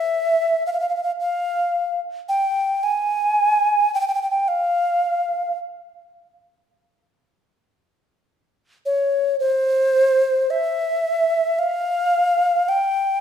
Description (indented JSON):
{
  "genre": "arabic",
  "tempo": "free time",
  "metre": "none",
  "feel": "none",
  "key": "F maqam nahawand",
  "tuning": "A4 = 440 Hz",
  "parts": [
    { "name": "alto ocarina", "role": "solo", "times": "0.0-13.2 s", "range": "C5 to Ab5", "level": "-18 LUFS", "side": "equal", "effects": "none" }
  ],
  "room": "wet recital hall reverb, RT60 1.7 s",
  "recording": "minimal, uncompressed stereo recording",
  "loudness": "-18 LUFS",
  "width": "side -8 dB against mid",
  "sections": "0.0-6.7 A section; 6.7-13.2 A section",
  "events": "none",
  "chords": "none",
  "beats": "free time"
}